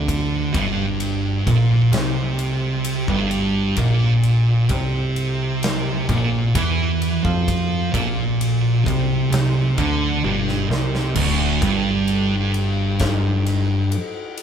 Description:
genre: stoner and doom metal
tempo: 65 BPM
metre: 4/4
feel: straight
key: unclear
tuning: A4 = 440 Hz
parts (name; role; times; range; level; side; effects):
- thick fuzz guitar; riff; 0.0-13.9 s; D2 to F3; -22 LUFS; left 6 dB; distortion
- thick fuzz guitar; riff; 0.0-13.9 s; D2 to F3; -21 LUFS; right 7 dB; distortion
- plucky analog bass; bass; 0.0-13.9 s; D1 to F2; -26 LUFS; left 1 dB; tube saturation
- big rock drum kit; drums; 0.1-14.4 s; crash cymbal, kick drum, ride cymbal, snare drum, toms; -26 LUFS; left 1 dB; none
room: moderate studio reverb, RT60 0.5 s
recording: band playing live in one room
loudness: -17 LUFS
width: side -8 dB against mid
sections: 0.0-11.2 A section; 11.2-14.4 B section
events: drum fill 10.2-11.2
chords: 0.0 G5; 3.8 Bb5; 11.2 N.C.

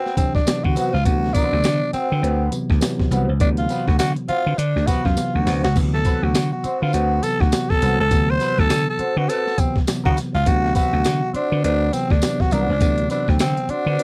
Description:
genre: funk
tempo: 102 BPM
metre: 4/4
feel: swing 60% on 16ths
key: D mixolydian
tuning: A4 = 441 Hz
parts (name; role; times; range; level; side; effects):
- growling tenor saxophone; melody; 0.0-14.0 s; C4 to C5; -25 LUFS; equal; none
- mellow electric guitar; accompaniment; 0.0-14.0 s; C4 to C5; -30 LUFS; equal; wah
- breakbeat sampler-style drum kit; drums; 0.1-14.0 s; crash cymbal, hi-hat, kick drum, snare drum; -23 LUFS; equal; none
- tine electric piano; stabs; 0.2-13.7 s; C3 to D4; -28 LUFS; equal; tube saturation, subtle chorus
- tambourine; percussion; 0.2-13.6 s; none; -38 LUFS; equal; none
- vintage slap bass; bass; 0.6-14.0 s; C2 to D3; -23 LUFS; equal; none
room: little or no reverb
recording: dry, close 1970s-style studio recording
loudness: -20 LUFS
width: mono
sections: 0.0-14.0 A section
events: drum fill 5.2-5.8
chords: 0.0 D13

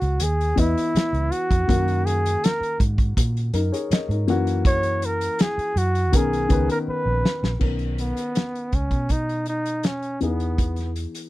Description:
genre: lush 1970s-style soul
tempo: 81 BPM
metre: 4/4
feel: straight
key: B major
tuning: A4 = 438 Hz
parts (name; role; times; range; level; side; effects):
- warm flugelhorn; melody; 0.0-10.9 s; B3 to C#5; -25 LUFS; right 1 dB; none
- dark baby grand piano; accompaniment; 0.0-11.3 s; D#3 to D#5; -27 LUFS; left 4 dB; none
- vintage muted fingered electric bass; bass; 0.0-11.1 s; A#1 to B2; -24 LUFS; equal; none
- warm soul drum kit; drums; 0.0-11.3 s; crash cymbal, hi-hat, kick drum, snare drum; -22 LUFS; equal; none
room: little or no reverb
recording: none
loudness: -20 LUFS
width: side -17 dB against mid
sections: 0.0-7.6 A section; 7.6-11.3 B section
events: flugelhorn solo 0.0-7.6; drum fill 6.9-7.6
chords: 0.0 Emaj7; 1.7 D#m7/F#; 4.3 F#7; 6.1 Bmaj9; 10.2 Emaj7

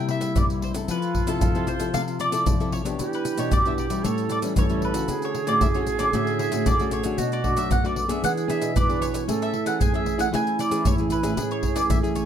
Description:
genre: samba and choro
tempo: 114 BPM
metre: 4/4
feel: straight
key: A major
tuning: A4 = 439 Hz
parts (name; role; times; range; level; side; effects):
- mandolin; melody; 0.0-12.3 s; A4 to G#5; -28 LUFS; equal; slapback echo
- wooden flute; second line; 0.0-12.3 s; E4 to B4; -30 LUFS; right 6 dB; none
- nylon-string guitar; accompaniment; 0.0-12.3 s; F#2 to A4; -29 LUFS; left 6 dB; none
- nylon-string guitar; bass; 0.0-12.1 s; A2 to B3; -29 LUFS; right 3 dB; none
- pandeiro, maracas and surdo; percussion; 0.1-12.3 s; none; -25 LUFS; equal; none
room: light reverb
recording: close, detailed microphones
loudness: -21 LUFS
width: side -9 dB against mid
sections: 0.0-12.3 A section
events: none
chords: 0.0 C7; 0.9 Fmaj7; 3.0 Em7; 4.0 A7; 5.1 Dmaj7; 7.2 Bm7; 8.2 E7; 9.3 Amaj7

